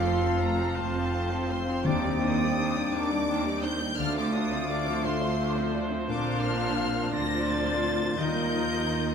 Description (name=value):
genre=cinematic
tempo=57 BPM (dotted quarters)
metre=6/8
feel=rubato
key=unclear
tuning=A4 = 441 Hz
part: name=clear studio violin section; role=melody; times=0.0-9.1 s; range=A5 to Bb6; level=-34 LUFS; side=left 3 dB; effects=none
part: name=bright concert flute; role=second line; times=0.0-9.1 s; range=D5 to G5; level=-36 LUFS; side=left 2 dB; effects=none
part: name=clear oboe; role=second line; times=0.0-9.1 s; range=A4 to D5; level=-38 LUFS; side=right 1 dB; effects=none
part: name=rich studio violin section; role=second line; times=0.0-9.1 s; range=Eb4 to F5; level=-39 LUFS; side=left 1 dB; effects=none
part: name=warm clarinet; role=second line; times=0.0-9.1 s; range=A3 to F4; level=-39 LUFS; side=left 1 dB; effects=none
part: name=warm studio viola section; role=accompaniment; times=0.0-9.1 s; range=D3 to F4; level=-35 LUFS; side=right 1 dB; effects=none
part: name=warm French horn section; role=sustained chords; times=0.0-9.1 s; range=A3 to F4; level=-31 LUFS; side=left 1 dB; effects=none
part: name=concert harp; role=arpeggios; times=0.0-9.1 s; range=Bb2 to A5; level=-36 LUFS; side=left 7 dB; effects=none
part: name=rich studio cello section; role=bass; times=0.0-9.1 s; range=D2 to Bb2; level=-33 LUFS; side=right 2 dB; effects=none
part: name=warm studio double bass section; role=bass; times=0.0-9.1 s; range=F1 to Eb2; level=-34 LUFS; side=right 4 dB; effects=none
part: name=timpani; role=percussion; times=1.8-2.9, 8.2-9.1 s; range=Eb3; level=-36 LUFS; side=right 1 dB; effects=none
room=moderate scoring stage reverb, RT60 1.8 s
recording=minimal, uncompressed stereo recording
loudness=-25 LUFS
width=side -7 dB against mid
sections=0.0-9.1 A section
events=none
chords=0.0 F; 1.8 Cmadd9/Eb; 4.0 Dm7; 6.1 Bbadd9; 8.2 Ebadd9